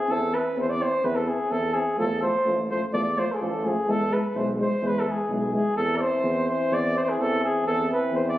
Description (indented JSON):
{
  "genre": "balkan folk, Balkan brass band",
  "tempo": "127 BPM",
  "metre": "2/4",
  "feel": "straight",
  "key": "E phrygian dominant",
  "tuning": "A4 = 439 Hz",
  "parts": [
    { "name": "mellow flugelhorn", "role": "melody", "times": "0.0-8.4 s", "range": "G#4 to D5", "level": "-25 LUFS", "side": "equal", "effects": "none" },
    { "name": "dark euphonium", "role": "accompaniment", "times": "0.1-8.4 s", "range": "G#3 to C4", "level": "-29 LUFS", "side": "left 2 dB", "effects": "none" },
    { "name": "warm euphonium", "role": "accompaniment", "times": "0.1-8.4 s", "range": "E3 to F3", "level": "-32 LUFS", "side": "right 2 dB", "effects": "none" },
    { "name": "warm tuba", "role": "bass", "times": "0.1-8.4 s", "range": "A1 to E2", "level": "-30 LUFS", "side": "equal", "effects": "none" }
  ],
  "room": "moderate scoring stage reverb, RT60 1.7 s",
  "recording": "recorded on a phone in the room, club reverb",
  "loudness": "-22 LUFS",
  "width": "side -14 dB against mid",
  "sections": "0.0-5.8 A section; 5.8-8.4 A section",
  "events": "none",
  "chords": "0.0 Eaug; 2.0 Dm9/A (rootless); 3.9 E; 5.8 E(#5, no3)",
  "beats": "| 0.10 0.57 | 1.04 1.51 | 1.98 2.46 | 2.93 3.40 | 3.88 4.35 | 4.82 5.29 | 5.76 6.24 | 6.71 7.18 | 7.65 8.12"
}